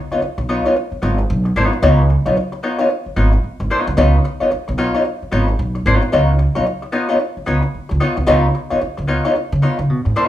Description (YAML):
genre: funk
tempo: 112 BPM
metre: 4/4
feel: swing 60% on 16ths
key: Db mixolydian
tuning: A4 = 440 Hz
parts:
  - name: hollow-body jazz guitar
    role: accompaniment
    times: 0.1-10.3 s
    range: Cb4 to Db5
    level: -17 LUFS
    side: left 1 dB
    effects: wah
  - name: upright bass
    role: bass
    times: 0.1-10.1 s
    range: Ab1 to Db3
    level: -17 LUFS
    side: right 1 dB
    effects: none
room: moderate large studio reverb, RT60 0.8 s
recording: band playing live in one room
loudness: -14 LUFS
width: side -13 dB against mid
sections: 0.0-10.3 A section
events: none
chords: 0.0 Db9